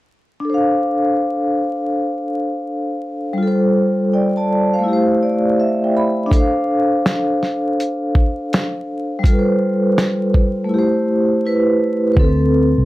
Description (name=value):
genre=lo-fi hip hop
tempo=82 BPM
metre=4/4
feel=swing 64% on 16ths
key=unclear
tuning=A4 = 442 Hz
part: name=vibraphone with soft mallets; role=accompaniment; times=0.4-12.8 s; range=G3 to B5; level=-16 LUFS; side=equal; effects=cassette tape
part: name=lo-fi sampler-style drum kit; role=drums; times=6.3-12.4 s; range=hi-hat, kick drum, snare drum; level=-15 LUFS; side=equal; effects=none
part: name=vintage muted fingered electric bass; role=bass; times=12.2-12.8 s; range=C2 to D2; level=-16 LUFS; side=equal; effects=none
room=light reverb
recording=vinyl crackle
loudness=-15 LUFS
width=side -17 dB against mid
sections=0.5-12.2 A section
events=vibraphone fill 4.9-6.3; hi-hats muted 12.2-12.8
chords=0.5 Dm7; 4.9 Am7; 6.3 Dm7; 9.2 G9sus4; 10.7 Am7; 12.2 D7(no3)